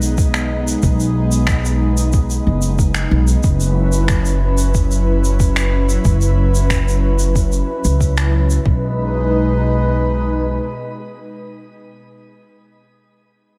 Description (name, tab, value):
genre	sunset chillout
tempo	92 BPM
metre	4/4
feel	straight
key	B major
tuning	A4 = 440 Hz
part	airy breathy pad	sustained chords	0.0-11.9 s	B2 to B4	-23 LUFS	equal	chorus, shimmer reverb
part	upright bass	bass	0.0-10.6 s	F#1 to C#2	-19 LUFS	equal	none
part	shaker and finger snaps	drums	0.0-8.6 s	none	-27 LUFS	equal	none
part	electronic kick drum	drums	0.2-8.8 s	none	-19 LUFS	equal	none
room	light reverb, small room ambience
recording	none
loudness	-16 LUFS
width	mono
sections	0.0-8.7 A section; 8.7-11.3 B section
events	none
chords	0.0 B6; 3.4 F#7sus4; 8.7 B6